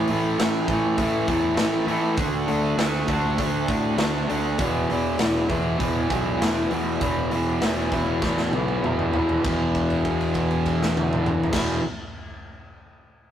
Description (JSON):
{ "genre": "garage rock duo or trio", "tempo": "99 BPM", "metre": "4/4", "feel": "straight", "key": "unclear", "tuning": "A4 = 440 Hz", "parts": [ { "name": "fuzz guitar", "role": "riff", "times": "0.0-11.8 s", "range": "E2 to D4", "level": "-22 LUFS", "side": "equal", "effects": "distortion" }, { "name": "fuzz picked electric bass", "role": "bass", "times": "0.0-11.8 s", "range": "E1 to A2", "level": "-28 LUFS", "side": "equal", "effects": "overdrive" }, { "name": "raw garage drum kit", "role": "drums", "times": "0.1-11.7 s", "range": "crash cymbal, hi-hat, kick drum, snare drum, toms", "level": "-28 LUFS", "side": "equal", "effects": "none" } ], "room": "light reverb", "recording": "rough rehearsal-room recording, tube saturation", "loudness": "-20 LUFS", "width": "side -10 dB against mid", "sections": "0.0-9.4 A section; 9.4-11.9 B section", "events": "drum fill 8.2-9.4; held note 9.4-11.5", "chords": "0.0 A5; 2.2 D5; 4.6 E5", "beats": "0.38 0.97 1.57 | 2.17 2.77 3.37 3.97 | 4.58 5.18 5.79 6.39 | 7.00 7.61 8.22 8.83 | 9.44 10.05 10.66 11.28" }